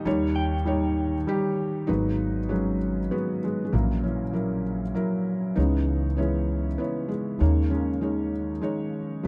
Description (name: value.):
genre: acoustic folk-pop ballad.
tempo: 98 BPM.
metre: 3/4.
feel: straight.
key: unclear.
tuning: A4 = 440 Hz.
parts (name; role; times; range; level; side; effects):
felt-muted upright piano; melody; 0.0-9.3 s; G#1 to C#5; -28 LUFS; equal; none.
direct-recorded clean electric guitar; arpeggios; 0.0-1.9 s; G5; -38 LUFS; equal; tremolo.
upright bass; bass; 0.1-9.3 s; G#1 to D#2; -29 LUFS; equal; none.
room: little or no reverb.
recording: dry, close 1970s-style studio recording.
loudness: -26 LUFS.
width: mono.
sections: 0.1-1.9 A section; 1.9-9.3 B section.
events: none.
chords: 0.1 D#7; 1.9 G#m7; 3.7 F#7/A#; 5.6 C#m7; 7.4 D#7sus4.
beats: | 0.06 0.67 1.28 | 1.89 2.50 3.12 | 3.73 4.34 4.96 | 5.57 6.18 6.79 | 7.41 8.02 8.63 | 9.25.